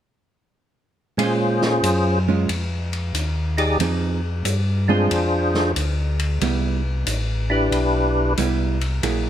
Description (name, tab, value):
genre	soul jazz organ trio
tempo	92 BPM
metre	4/4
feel	swing 66% on 8ths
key	unclear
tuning	A4 = 439 Hz
part	percussive tonewheel organ	melody	1.2-8.3 s	Db4 to D5	-21 LUFS	left 1 dB	slow rotary speaker, chorus vibrato
part	archtop guitar, miked and amplified	accompaniment	1.2-9.3 s	F3 to Ab4	-24 LUFS	right 6 dB	none
part	mellow tonewheel organ	bass	1.2-9.3 s	A1 to Bb2	-22 LUFS	left 1 dB	slow rotary speaker
part	vintage drum kit	drums	1.2-9.2 s	hi-hat, ride cymbal, snare drum	-28 LUFS	left 2 dB	none
room	moderate large studio reverb, RT60 1.3 s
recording	none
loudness	-19 LUFS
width	side -10 dB against mid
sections	1.2-9.3 A section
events	none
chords	1.2 Bbm7; 3.8 Fm7; 5.1 Dm7b5; 6.4 Cmaj7